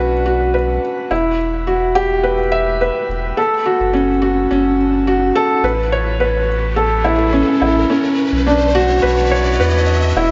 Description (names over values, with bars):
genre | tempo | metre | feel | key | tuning
piano and strings electronica | 106 BPM | 4/4 | straight | unclear | A4 = 440 Hz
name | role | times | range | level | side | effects
felt-muted upright piano | riff | 0.0-10.3 s | C#4 to E5 | -17 LUFS | equal | digital delay, shimmer reverb
warm sub bass | bass | 0.0-10.3 s | E1 to E2 | -22 LUFS | equal | tube saturation
riser and swell | sound effects | 2.7-10.2 s | none | -29 LUFS | equal | none
room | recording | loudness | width
moderate echo chamber reverb, RT60 1.4 s | nothing above 7.6 kHz | -16 LUFS | mono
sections
0.0-10.2 A section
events
build-up 0.0-10.2; riser 2.7-10.2; swell 9.0-10.2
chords
0.0 Bmadd9; 1.1 Emadd9; 3.4 F#m; 5.6 Aadd9; 7.9 Bmadd9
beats
0.54 | 1.11 1.67 2.24 2.80 | 3.37 3.94 4.50 5.07 | 5.63 6.20 6.77 7.33 | 7.90 8.46 9.03 9.60 | 10.16